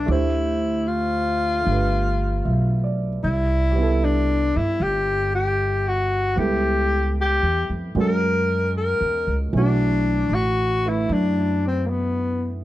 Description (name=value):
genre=jazz ballad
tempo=76 BPM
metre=4/4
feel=swing 68% on 8ths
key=unclear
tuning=A4 = 440 Hz
part: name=breathy tenor saxophone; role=melody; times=0.0-12.5 s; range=Bb3 to A#4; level=-22 LUFS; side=left 2 dB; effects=none
part: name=warm upright piano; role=accompaniment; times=0.0-12.6 s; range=E3 to E5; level=-29 LUFS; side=right 5 dB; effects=none
part: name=upright bass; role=bass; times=0.0-12.6 s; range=G1 to G2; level=-22 LUFS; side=equal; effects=none
room=studio ambience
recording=dry, close 1970s-style studio recording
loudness=-19 LUFS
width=side -15 dB against mid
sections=0.0-12.6 A section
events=none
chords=0.1 Dm9; 1.6 G9; 3.2 Cmaj7; 6.4 C#m7b5; 7.9 F#7; 9.5 Bm7